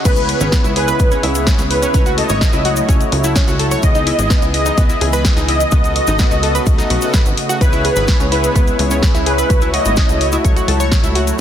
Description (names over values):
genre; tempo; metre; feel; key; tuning
progressive house; 127 BPM; 4/4; straight; C# minor; A4 = 440 Hz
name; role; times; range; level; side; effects
lush unison pad; sustained chords; 0.0-11.4 s; C#3 to D#5; -25 LUFS; right 1 dB; chorus, sidechain pumping
wide unison lead; melody; 0.1-10.4 s; B4 to D#5; -20 LUFS; equal; ensemble chorus, ping-pong delay
analog pluck; arpeggios; 0.1-11.2 s; B3 to C#5; -22 LUFS; equal; chorus, sidechain pumping, ping-pong delay
soft supersaw; stabs; 0.1-11.4 s; A3 to D#5; -22 LUFS; left 3 dB; sidechain pumping, ping-pong delay
plucky analog bass; bass; 0.1-11.3 s; G#1 to C#2; -20 LUFS; equal; sidechain pumping
electronic kick drum; drums; 0.1-11.0 s; none; -14 LUFS; equal; studio reverb
house drum kit; drums; 0.1-11.4 s; crash cymbal, hi-hat, snare drum; -22 LUFS; left 1 dB; high-pass filter on hats, studio reverb, high-pass filter on snare, high-pass filter on cymbals
tube shaker; percussion; 0.1-11.4 s; none; -29 LUFS; left 2 dB; none
room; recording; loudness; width
little or no reverb; dense, heavily limited modern master; -12 LUFS; side -10 dB against mid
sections
0.1-11.4 A section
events
drop 0.1-11.4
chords
0.1 C#m7; 1.9 F#m7; 3.8 Emaj7; 5.7 B7; 7.6 C#m7; 9.5 F#m7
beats
| 0.05 0.52 1.00 1.47 | 1.94 2.41 2.89 3.36 | 3.83 4.30 4.78 5.25 | 5.72 6.19 6.67 7.14 | 7.61 8.08 8.56 9.03 | 9.50 9.97 10.45 10.92